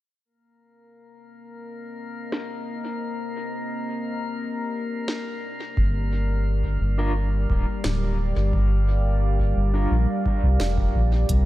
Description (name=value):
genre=ambient dub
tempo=87 BPM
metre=4/4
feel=straight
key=C minor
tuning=A4 = 440 Hz
part: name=deep dark ambient pad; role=sustained chords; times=1.7-11.5 s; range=G3 to F5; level=-31 LUFS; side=right 1 dB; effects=chorus, built-in reverb
part: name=drifting glass-harmonics texture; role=texture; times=1.3-11.3 s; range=Bb3 to Bb4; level=-33 LUFS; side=left 3 dB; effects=chorus, built-in reverb
part: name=organic electronic drum kit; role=drums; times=2.3-11.4 s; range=hi-hat, snare drum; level=-34 LUFS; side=equal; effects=low-pass filter on snare, studio reverb, low-pass filter on hats, dub echo
part: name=round analog bass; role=bass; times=5.8-11.5 s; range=D1 to C2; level=-21 LUFS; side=equal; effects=none
part: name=electronic kick drum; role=drums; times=5.8-11.4 s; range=none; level=-26 LUFS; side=equal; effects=studio reverb
part: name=mellow electric guitar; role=stabs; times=7.0-10.0 s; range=D4 to Bb4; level=-34 LUFS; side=right 1 dB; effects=tremolo, dub echo
room=light reverb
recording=none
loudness=-22 LUFS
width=side -16 dB against mid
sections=0.3-11.3 A section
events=fade-in on ambient pad 0.3-11.3; filter sweep on drum 0.3-11.3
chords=0.3 Cm9; 5.8 Gm7